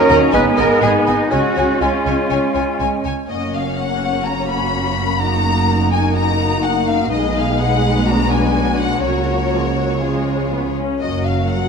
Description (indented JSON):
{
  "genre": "quick classical-period movement for symphony orchestra",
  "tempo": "124 BPM",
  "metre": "4/4",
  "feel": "straight",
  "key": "F# major",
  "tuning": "A4 = 436 Hz",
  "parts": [
    { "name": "bright oboe", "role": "second line", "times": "0.0-2.8 s", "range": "D#4 to B4", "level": "-25 LUFS", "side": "right 1 dB", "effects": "none" },
    { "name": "bright silver concert flute", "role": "second line", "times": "0.0-3.0 s", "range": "G#5 to A#5", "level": "-24 LUFS", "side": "left 1 dB", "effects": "none" },
    { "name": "warm clarinet", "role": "second line", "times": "0.0-3.0 s", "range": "C#5 to D#5", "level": "-25 LUFS", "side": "left 1 dB", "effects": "none" },
    { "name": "clear studio viola section", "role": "accompaniment", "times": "0.0-11.7 s", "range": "E#3 to D#4", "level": "-22 LUFS", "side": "right 1 dB", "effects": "none" },
    { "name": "mellow bassoon", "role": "accompaniment", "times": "0.0-3.0 s", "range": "F#3 to G#3", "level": "-22 LUFS", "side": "right 3 dB", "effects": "none" },
    { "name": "warm French horn section", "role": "sustained chords", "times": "0.0-11.7 s", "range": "E#3 to D#4", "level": "-23 LUFS", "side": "left 5 dB", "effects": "none" },
    { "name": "warm studio cello section", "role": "bass", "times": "0.0-11.7 s", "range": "F#2 to B4", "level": "-23 LUFS", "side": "right 3 dB", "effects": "none" },
    { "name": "rich studio violin section", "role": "melody", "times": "0.1-11.7 s", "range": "C#5 to B5", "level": "-22 LUFS", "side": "left 5 dB", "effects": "none" },
    { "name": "clear studio violin section", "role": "second line", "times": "0.1-11.7 s", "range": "E#4 to G#5", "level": "-26 LUFS", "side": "left 4 dB", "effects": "none" },
    { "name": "rich studio double bass section", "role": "bass", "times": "0.1-11.7 s", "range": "F#1 to D#2", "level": "-22 LUFS", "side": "right 4 dB", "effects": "none" }
  ],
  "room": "wet scoring stage reverb, RT60 1.6 s",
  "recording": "none",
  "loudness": "-15 LUFS",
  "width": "side -6 dB against mid",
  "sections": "0.0-3.3 A section; 3.3-11.7 B section",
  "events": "none",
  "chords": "0.3 G#m; 1.3 C#; 3.3 F#; 5.2 D#m/F#; 7.1 G#m7/B; 8.1 G#m7b5/B; 9.0 F#/C#; 10.0 C#; 11.0 F#"
}